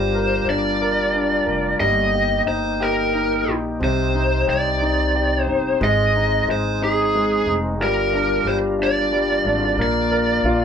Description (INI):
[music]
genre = six-eight pop ballad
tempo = 60 BPM (dotted quarters)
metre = 6/8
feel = straight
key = unclear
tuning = A4 = 440 Hz
[part]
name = lead guitar through a small cranked amp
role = melody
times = 0.0-10.6 s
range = Ab4 to Eb5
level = -20 LUFS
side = right 1 dB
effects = overdrive
[part]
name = clear baby grand piano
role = accompaniment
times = 0.0-10.6 s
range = C3 to Bb4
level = -23 LUFS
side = left 2 dB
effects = none
[part]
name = tonewheel organ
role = sustained chords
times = 0.0-10.6 s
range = C3 to Bb4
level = -27 LUFS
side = left 1 dB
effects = chorus vibrato
[part]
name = upright bass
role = bass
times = 0.0-10.6 s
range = F1 to C2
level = -26 LUFS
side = equal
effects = none
[sound]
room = moderate studio reverb, RT60 0.5 s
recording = band playing live in one room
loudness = -17 LUFS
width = side -7 dB against mid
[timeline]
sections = 0.0-10.6 A section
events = none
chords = 0.0 Gm7; 1.8 Eb/G; 3.8 Cm; 5.8 Ab; 7.8 Gm7; 9.8 Bb